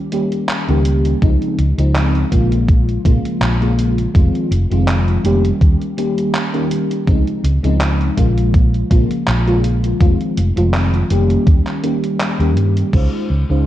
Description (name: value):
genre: vaporwave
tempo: 82 BPM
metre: 4/4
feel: swing 54% on 16ths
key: unclear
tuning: A4 = 441 Hz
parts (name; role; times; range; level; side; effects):
- FM electric piano with soft pad layer; accompaniment; 0.0-13.7 s; Db3 to C5; -18 LUFS; left 1 dB; tremolo, analog chorus, tape echo
- gated 80s digital drum machine; drums; 0.1-13.1 s; crash cymbal, handclaps, hi-hat; -25 LUFS; right 1 dB; gated reverb, vintage 12-bit sampler grit
- hollow-body short-scale fingered electric bass; bass; 0.7-13.7 s; F1 to G2; -16 LUFS; equal; tube saturation
- electronic kick drum; drums; 1.2-13.1 s; none; -13 LUFS; equal; vintage 12-bit sampler grit
room: light reverb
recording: dark, warm production, cassette tape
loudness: -13 LUFS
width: side -13 dB against mid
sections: 0.0-12.9 A section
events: none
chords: 0.0 Eb7; 1.2 Dbmaj9; 2.3 Bbm7; 4.2 Fm7; 5.6 Eb7; 7.1 Dbmaj9; 8.2 Bbm7; 10.0 Fm7; 11.5 Eb7; 12.9 Dbmaj9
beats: 0.49 | 1.23 1.96 2.69 3.42 | 4.15 4.88 5.62 6.35 | 7.08 7.81 8.54 9.27 | 10.01 10.74 11.47 12.20 | 12.93 13.66